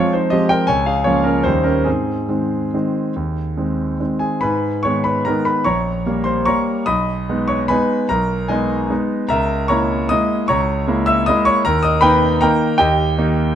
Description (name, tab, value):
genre	classical, piano waltz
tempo	133-170 BPM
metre	3/4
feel	rubato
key	Ab major, G# minor from 4.4 s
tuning	A4 = 442 Hz
part	clear concert grand piano	solo	0.0-13.6 s	Bb1 to E6	-15 LUFS	equal	none
room	light reverb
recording	close, detailed microphones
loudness	-15 LUFS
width	side -9 dB against mid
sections	0.0-4.4 A section; 4.4-13.6 B section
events	none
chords	0.0 Fm; 0.7 Bbm7/Db; 1.5 Eb7; 1.9 Ab; 4.4 G#m; 5.7 Gdim/Bb; 6.9 G#m/B; 9.3 A#m7b5/C#; 11.6 D#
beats	0.33 | 0.69 1.06 1.46 | 1.86 2.29 2.73 | 3.16 3.57 4.00 | 4.44 4.86 5.27 | 5.67 6.06 6.47 | 6.88 7.29 7.70 | 8.10 8.50 8.90 | 9.30 9.70 10.11 | 10.49 10.88 11.27 | 11.64 12.02 12.42 | 12.80 13.18